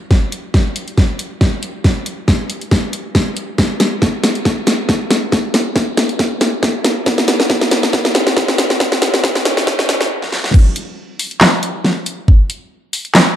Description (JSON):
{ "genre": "dubstep", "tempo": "138 BPM", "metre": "4/4", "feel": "swing 54% on 16ths, half-time", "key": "none", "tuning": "none", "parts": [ { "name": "dubstep drum kit", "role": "drums", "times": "0.1-13.2 s", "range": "crash cymbal, handclaps, hi-hat, snare drum", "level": "-14 LUFS", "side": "equal", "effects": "studio ambience" }, { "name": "electronic kick drum", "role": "drums", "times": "0.1-12.4 s", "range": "none", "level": "-12 LUFS", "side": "equal", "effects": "studio ambience" } ], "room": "wet plate reverb, RT60 1.7 s, digital ambience", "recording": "dark, warm production, high-pass filter", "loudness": "-13 LUFS", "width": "side -11 dB against mid", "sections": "0.0-10.5 A section; 10.5-13.4 B section", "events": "build-up 0.0-10.5; drum fill 0.0-10.1, 10.2-10.5; filter sweep 0.0-10.5; stop 10.1-10.5; drop 10.5-13.4", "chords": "none", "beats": "| 0.11 0.54 0.98 1.41 | 1.84 2.28 2.71 3.15 | 3.58 4.02 4.45 4.89 | 5.32 5.76 6.19 6.63 | 7.06 7.50 7.93 8.37 | 8.80 9.24 9.67 10.11 | 10.54 10.98 11.41 11.85 | 12.28 12.71 13.15" }